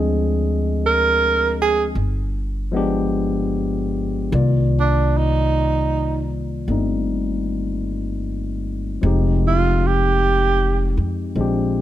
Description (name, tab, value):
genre	jazz ballad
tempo	51 BPM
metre	4/4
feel	swing 66% on 8ths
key	unclear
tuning	A4 = 442 Hz
part	barky tine electric piano	accompaniment	0.0-11.8 s	Eb3 to Eb5	-23 LUFS	left 3 dB	overdrive
part	upright bass	bass	0.0-11.8 s	F1 to F2	-21 LUFS	equal	none
part	breathy tenor saxophone	melody	0.9-11.0 s	D4 to Bb4	-19 LUFS	right 4 dB	none
room	light reverb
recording	close, detailed microphones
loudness	-18 LUFS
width	side -13 dB against mid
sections	0.0-11.8 A section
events	tenor saxophone solo 0.0-11.8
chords	0.0 Dm7b5; 2.0 G7b9; 4.3 Cm11; 9.0 Fm9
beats	0.78 1.96 3.14 | 4.32 5.50 6.68 7.86 | 9.03 10.20 11.37